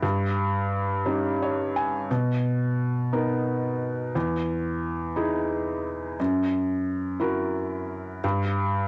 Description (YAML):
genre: folk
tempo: 58 BPM (dotted quarters)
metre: 6/8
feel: straight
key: unclear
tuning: A4 = 442 Hz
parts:
  - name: felt-muted upright piano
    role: solo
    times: 0.0-8.9 s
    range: E2 to G#5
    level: -27 LUFS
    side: equal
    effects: none
room: moderate studio reverb, RT60 0.6 s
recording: home recording on cassette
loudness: -27 LUFS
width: mono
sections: 0.0-8.9 A section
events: none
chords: 0.0 D#7/G; 2.1 Bmaj7; 4.2 Emaj7; 6.2 F#7; 8.2 N.C.